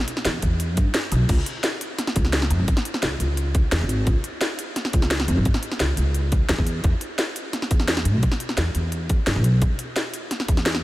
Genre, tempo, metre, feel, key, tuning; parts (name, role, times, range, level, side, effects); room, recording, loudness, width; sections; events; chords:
liquid drum and bass; 173 BPM; 4/4; straight; A4 = 440 Hz
drum and bass drum kit; drums; 0.1-10.8 s; crash cymbal, hi-hat, snare drum; -25 LUFS; equal
upright bass; bass; 0.2-10.8 s; G#1 to A2; -22 LUFS; equal
electronic kick drum; drums; 0.4-10.6 s; -21 LUFS; equal
light reverb; -20 LUFS; side -17 dB against mid
0.0-1.3 A section; 1.3-10.8 A section
drop 0.0-1.3, 1.3-10.8